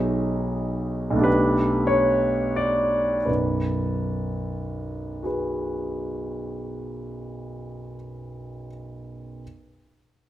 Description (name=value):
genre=classical, impressionist solo piano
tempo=27-41 BPM (dotted quarters)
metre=6/8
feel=rubato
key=unclear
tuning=A4 = 438 Hz
part: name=clear concert grand piano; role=solo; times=0.0-9.4 s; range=B1 to D5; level=-23 LUFS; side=equal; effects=none
room=moderate recital hall reverb, RT60 1.5 s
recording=close, detailed microphones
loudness=-22 LUFS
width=side -13 dB against mid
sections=0.0-3.3 A section; 3.3-7.2 B section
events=slowing down 0.0-3.3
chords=0.0 B6; 1.3 Gadd9/B; 3.3 B5